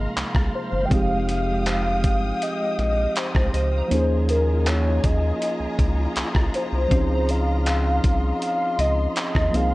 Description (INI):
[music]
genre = contemporary R&B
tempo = 80 BPM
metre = 4/4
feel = straight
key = unclear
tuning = A4 = 441 Hz
[part]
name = warm velvety synth lead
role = melody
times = 0.0-9.7 s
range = Bb4 to G5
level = -26 LUFS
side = equal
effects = chorus, digital delay
[part]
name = soft electric-piano-like synth keys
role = accompaniment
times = 0.0-9.7 s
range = C3 to Ab4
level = -27 LUFS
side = right 1 dB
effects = chorus
[part]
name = warm studio string section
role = sustained chords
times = 0.0-9.7 s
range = Ab3 to Eb6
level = -32 LUFS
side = left 1 dB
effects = none
[part]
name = rubbery square bass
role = bass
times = 0.0-9.7 s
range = F1 to Eb2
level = -23 LUFS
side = equal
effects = none
[part]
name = glassy wavetable pluck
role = texture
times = 0.0-9.7 s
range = C5 to Bb5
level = -39 LUFS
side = left 1 dB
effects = none
[part]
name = dusty soul sampler-style drum kit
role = drums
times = 0.2-9.7 s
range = handclaps, hi-hat, kick drum, rim click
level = -24 LUFS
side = equal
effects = none
[sound]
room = digital ambience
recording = worn, warbling old tape, cassette tape, warbly pitch drift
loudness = -19 LUFS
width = side -19 dB against mid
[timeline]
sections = 0.0-9.7 A section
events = break 0.0-0.9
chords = 0.0 Ab69; 0.9 Fm9; 3.9 Eb9sus4